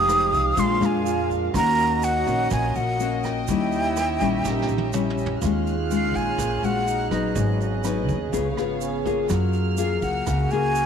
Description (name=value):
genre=bossa nova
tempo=124 BPM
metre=4/4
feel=straight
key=Eb minor from 5.4 s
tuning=A4 = 440 Hz
part: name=breathy jazz flute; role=melody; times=0.0-10.9 s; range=Eb5 to Eb6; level=-24 LUFS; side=equal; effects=none
part: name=growling trombone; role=second line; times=0.0-10.9 s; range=Cb4 to G4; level=-30 LUFS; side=right 12 dB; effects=none
part: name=nylon-string guitar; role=accompaniment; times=0.0-10.9 s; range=Ab2 to C5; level=-26 LUFS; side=left 8 dB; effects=none
part: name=warm studio string section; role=sustained chords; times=0.0-10.9 s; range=Ab3 to Gb6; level=-31 LUFS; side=right 3 dB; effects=none
part: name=upright bass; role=bass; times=0.0-10.9 s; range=F1 to Gb2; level=-27 LUFS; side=right 1 dB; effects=none
part: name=vintage brush drum kit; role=drums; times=0.1-10.9 s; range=hi-hat, kick drum, rim click, snare drum, toms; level=-34 LUFS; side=right 4 dB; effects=none
part: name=egg shaker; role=percussion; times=0.1-10.9 s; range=none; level=-40 LUFS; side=right 18 dB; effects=none
room=light reverb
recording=1960s-style stereo with parts hard left and right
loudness=-20 LUFS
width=side -7 dB against mid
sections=0.0-5.4 A section; 5.4-10.9 B section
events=drum fill 4.4-5.4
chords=0.0 Fm7; 0.6 A#7; 1.5 D#m7; 3.5 D#7b9; 5.4 Ebm11; 7.4 Abm7; 8.3 Db7; 9.3 Gbmaj9